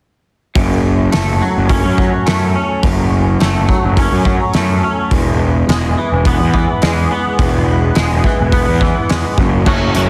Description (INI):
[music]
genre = quiet-loud alternative rock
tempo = 105 BPM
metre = 4/4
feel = straight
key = F# minor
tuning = A4 = 439 Hz
[part]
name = twangy electric guitar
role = arpeggios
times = 0.6-10.1 s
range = E2 to F#4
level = -19 LUFS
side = equal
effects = ensemble chorus
[part]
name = fuzz picked electric bass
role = bass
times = 0.6-10.1 s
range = E1 to F#2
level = -18 LUFS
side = equal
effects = overdrive
[part]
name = loose indie drum kit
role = drums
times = 0.6-10.1 s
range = crash cymbal, hi-hat, kick drum, snare drum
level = -19 LUFS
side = equal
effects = none
[sound]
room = light reverb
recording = heavily compressed radio sound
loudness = -14 LUFS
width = mono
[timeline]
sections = 0.6-9.7 A section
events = none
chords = 0.6 F#m; 5.1 E; 9.4 N.C.